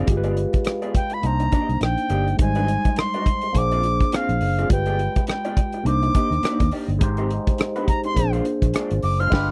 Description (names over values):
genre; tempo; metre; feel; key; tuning
lush 1970s-style soul; 104 BPM; 4/4; swing 58% on 16ths; unclear; A4 = 440 Hz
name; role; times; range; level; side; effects
overdriven tine electric piano; accompaniment; 0.0-9.5 s; G3 to F5; -28 LUFS; equal; phaser
electric guitar through a small old amp; riff; 0.0-9.5 s; Ab3 to F5; -33 LUFS; equal; analog chorus
vintage muted fingered electric bass; bass; 0.0-9.5 s; Gb1 to Eb2; -25 LUFS; equal; none
warm soul drum kit; drums; 0.1-9.5 s; crash cymbal, hi-hat, kick drum, rim click, snare drum; -24 LUFS; equal; none
bright reedy silver concert flute; melody; 1.0-9.5 s; F5 to F6; -27 LUFS; equal; none
room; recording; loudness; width
little or no reverb; dry, close 1970s-style studio recording; -21 LUFS; mono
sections
0.0-9.5 A section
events
band accent 9.3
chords
0.1 G7b9; 1.2 Cm9; 2.4 Abmaj7; 3.5 Bb9; 4.7 G7b9; 5.9 Cm9; 7.0 Abmaj7; 8.2 Bb9